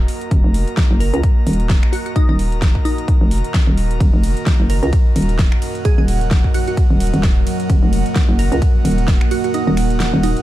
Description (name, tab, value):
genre	bass house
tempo	130 BPM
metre	4/4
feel	swing 57% on 16ths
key	Eb minor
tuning	A4 = 440 Hz
part	deep dark ambient pad	sustained chords	0.0-10.4 s	Gb3 to Db5	-26 LUFS	right 2 dB	chorus, built-in reverb, sidechain pumping
part	hollow knocking FM bass	bass	0.0-10.3 s	Eb1 to Db2	-17 LUFS	equal	overdrive, sidechain pumping
part	airy breathy pad	texture	0.0-10.4 s	Gb4 to Bb5	-26 LUFS	right 2 dB	chorus, sidechain pumping
part	big-room dance drum kit	drums	0.1-10.4 s	finger snaps, hi-hat, ride cymbal, snare drum	-26 LUFS	equal	overdrive, small room ambience
part	electronic kick drum	drums	0.3-9.2 s	none	-14 LUFS	equal	overdrive, small room ambience
part	glassy wavetable pluck	melody	1.0-10.4 s	Eb4 to Bb4	-25 LUFS	right 3 dB	chorus, tape echo
room	little or no reverb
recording	dark, warm production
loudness	-13 LUFS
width	side -14 dB against mid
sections	0.0-10.4 A section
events	kick drops out 9.5-10.4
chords	0.0 Ebm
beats	| 0.31 0.77 1.23 1.70 | 2.16 2.62 3.08 3.54 | 4.00 4.46 4.93 5.39 | 5.85 6.31 6.77 7.23 | 7.70 8.16 8.62 9.08 | 9.54 10.00